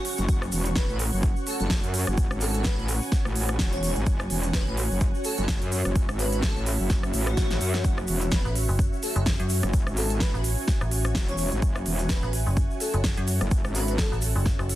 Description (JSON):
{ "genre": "bass house", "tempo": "127 BPM", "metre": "4/4", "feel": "swing 56% on 16ths", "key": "F# minor", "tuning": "A4 = 440 Hz", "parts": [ { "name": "airy dreamy lead", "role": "melody", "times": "0.0-14.2 s", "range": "F#4 to C#5", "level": "-34 LUFS", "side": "equal", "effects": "chorus, digital delay" }, { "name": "dark analog pad", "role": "sustained chords", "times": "0.0-14.8 s", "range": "C#4 to G#5", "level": "-35 LUFS", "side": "right 1 dB", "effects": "chorus, sidechain pumping" }, { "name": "big-room dance drum kit", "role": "drums", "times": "0.0-14.8 s", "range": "hi-hat, rim click, snare drum", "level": "-31 LUFS", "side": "right 1 dB", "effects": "none" }, { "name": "ethereal airy pad", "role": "texture", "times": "0.0-14.8 s", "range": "F#4 to C#6", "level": "-37 LUFS", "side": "equal", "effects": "ensemble chorus, built-in reverb, sidechain pumping" }, { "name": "egg shaker", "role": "percussion", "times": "0.1-14.8 s", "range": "none", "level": "-39 LUFS", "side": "left 3 dB", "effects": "none" }, { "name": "metallic wobble bass", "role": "bass", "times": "0.2-14.1 s", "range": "E1 to F#2", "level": "-27 LUFS", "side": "equal", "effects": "distortion, chorus, overdrive, sidechain pumping" }, { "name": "electronic kick drum", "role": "drums", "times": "0.3-14.6 s", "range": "none", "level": "-25 LUFS", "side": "equal", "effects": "none" }, { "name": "metallic FM bass", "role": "bass", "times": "8.5-14.8 s", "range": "F#1 to F#2", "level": "-25 LUFS", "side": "equal", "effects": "overdrive, sidechain pumping" } ], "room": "little or no reverb", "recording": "dense, heavily limited modern master", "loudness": "-23 LUFS", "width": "side -15 dB against mid", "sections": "0.0-14.8 A section", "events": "drum fill 7.4-7.8", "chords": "0.0 F#5" }